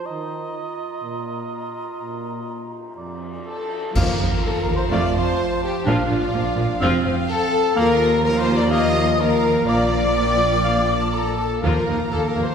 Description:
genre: cinematic, heroic adventure film score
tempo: 125 BPM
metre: 4/4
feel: straight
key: unclear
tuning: A4 = 440 Hz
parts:
  - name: clear clarinet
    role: second line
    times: 0.0-12.5 s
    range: A3 to F4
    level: -29 LUFS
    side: left 1 dB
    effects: none
  - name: mellow cor anglais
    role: second line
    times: 0.0-12.5 s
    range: D5 to F5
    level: -32 LUFS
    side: right 2 dB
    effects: none
  - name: mellow hollow concert flute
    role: second line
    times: 0.0-12.5 s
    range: F5 to Eb6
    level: -30 LUFS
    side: right 1 dB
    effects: none
  - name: warm trombone section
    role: sustained chords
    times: 0.1-12.5 s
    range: F2 to F4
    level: -29 LUFS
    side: right 2 dB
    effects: none
  - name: cymbal swell, clash cymbals and concert bass drum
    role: percussion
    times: 0.1-4.9 s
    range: none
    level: -26 LUFS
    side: equal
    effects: none
  - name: mellow French horn section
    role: sustained chords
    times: 3.4-12.5 s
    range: F4 to Eb5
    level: -25 LUFS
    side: left 4 dB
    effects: none
  - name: warm symphonic violin section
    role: melody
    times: 3.5-12.5 s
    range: F4 to Eb5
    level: -29 LUFS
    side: left 4 dB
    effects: none
  - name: warm trumpet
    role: stabs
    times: 3.5-12.5 s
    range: F4 to Eb5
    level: -27 LUFS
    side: equal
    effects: none
  - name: warm symphonic violin section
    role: second line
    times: 4.0-12.5 s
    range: D5 to Bb5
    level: -32 LUFS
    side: left 2 dB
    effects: none
  - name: rich symphonic viola section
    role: accompaniment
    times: 4.0-12.4 s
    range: F3 to F4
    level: -28 LUFS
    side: left 1 dB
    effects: none
  - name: rich symphonic double bass section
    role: bass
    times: 4.0-12.4 s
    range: F1 to Eb2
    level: -25 LUFS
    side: right 1 dB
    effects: none
  - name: warm symphonic cello section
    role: bass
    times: 4.0-12.4 s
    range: Eb2 to Bb2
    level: -26 LUFS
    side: right 2 dB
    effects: none
room: wet scoring stage reverb, RT60 1.9 s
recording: heard from further back in the room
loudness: -18 LUFS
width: side -7 dB against mid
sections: 0.0-4.0 A section; 4.0-12.5 B section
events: band accent 4.0-4.4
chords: 0.1 Ebsus2; 2.0 Bb; 4.0 Ebsus2; 4.9 F; 5.9 Bb; 6.8 F; 7.8 Ebsus2; 9.7 Bb; 11.6 Ebsus2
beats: | 0.06 0.53 1.01 1.49 | 1.99 2.49 2.98 3.47 | 3.96 4.44 4.92 5.40 | 5.87 6.35 6.82 7.30 | 7.77 8.25 8.72 9.20 | 9.69 10.17 10.66 11.15 | 11.63 12.12

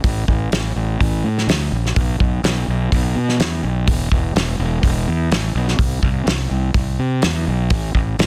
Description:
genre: quiet-loud alternative rock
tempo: 125 BPM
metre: 4/4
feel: straight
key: unclear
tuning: A4 = 436 Hz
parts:
  - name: fuzz fingered electric bass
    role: bass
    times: 0.0-8.3 s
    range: E1 to C3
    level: -21 LUFS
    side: equal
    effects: overdrive
  - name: loose indie drum kit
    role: drums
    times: 0.0-8.3 s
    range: hi-hat, kick drum, snare drum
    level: -22 LUFS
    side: equal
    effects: none
room: little or no reverb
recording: dense, heavily limited modern master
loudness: -19 LUFS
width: mono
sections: 0.0-8.3 A section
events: none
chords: none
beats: | 0.04 0.52 1.00 1.48 | 1.95 2.43 2.91 3.39 | 3.87 4.35 4.83 5.31 | 5.79 6.27 6.75 7.23 | 7.71 8.19

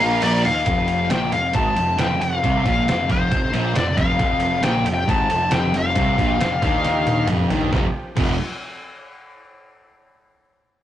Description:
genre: hard rock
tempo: 136 BPM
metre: 4/4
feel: straight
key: unclear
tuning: A4 = 441 Hz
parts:
  - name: high-gain lead guitar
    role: melody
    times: 0.0-7.3 s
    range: C5 to A5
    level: -21 LUFS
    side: left 3 dB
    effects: distortion
  - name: analog string pad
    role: sustained chords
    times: 0.0-0.7, 4.2-7.9 s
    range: F3 to C5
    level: -33 LUFS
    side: right 1 dB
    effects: ensemble chorus
  - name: overdriven semi-hollow guitar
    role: riff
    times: 0.0-8.3 s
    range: F2 to Bb3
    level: -28 LUFS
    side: left 3 dB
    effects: none
  - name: sludgy distorted guitar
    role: riff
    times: 0.0-8.3 s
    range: F2 to Bb3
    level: -26 LUFS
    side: right 4 dB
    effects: overdrive
  - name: fuzz picked electric bass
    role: bass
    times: 0.0-8.4 s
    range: F1 to Eb2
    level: -24 LUFS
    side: equal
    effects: overdrive
  - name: trip hop sampler-style drum kit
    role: drums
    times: 0.0-8.3 s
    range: crash cymbal, kick drum, ride cymbal, snare drum, toms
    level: -24 LUFS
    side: right 1 dB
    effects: none
room: moderate stone room reverb, RT60 1.2 s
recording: rough rehearsal-room recording, tube saturation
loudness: -17 LUFS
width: side -12 dB against mid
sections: 0.7-7.7 A section; 7.7-9.5 B section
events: break 0.0-0.7; drum fill 6.8-7.7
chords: 0.0 Bb; 0.7 F5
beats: 0.23 | 0.67 1.11 1.55 1.99 | 2.43 2.87 3.31 3.75 | 4.20 4.64 5.08 5.52 | 5.96 6.40 6.84 7.28 | 7.72 8.17

